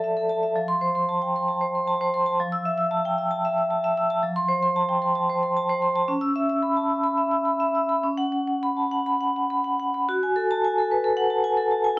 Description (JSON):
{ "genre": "classical, contemporary piece for solo vibraphone", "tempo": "201-235 BPM (eighths)", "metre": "7/8", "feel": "rubato", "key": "unclear", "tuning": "A4 = 442 Hz", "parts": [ { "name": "vibraphone with medium hard mallets", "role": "solo", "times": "0.0-12.0 s", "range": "F3 to E6", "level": "-21 LUFS", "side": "equal", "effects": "none" } ], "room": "light reverb", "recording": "worn, warbling old tape, cassette tape, warbly pitch drift", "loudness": "-21 LUFS", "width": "side -20 dB against mid", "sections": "0.0-10.1 A section; 10.1-12.0 B section", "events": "none", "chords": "0.0 Fmaj7; 0.6 Am7/E#; 2.4 Fmaj9; 4.2 Am7/E#; 6.1 C#m7; 8.0 C#7sus4; 10.1 F#madd9" }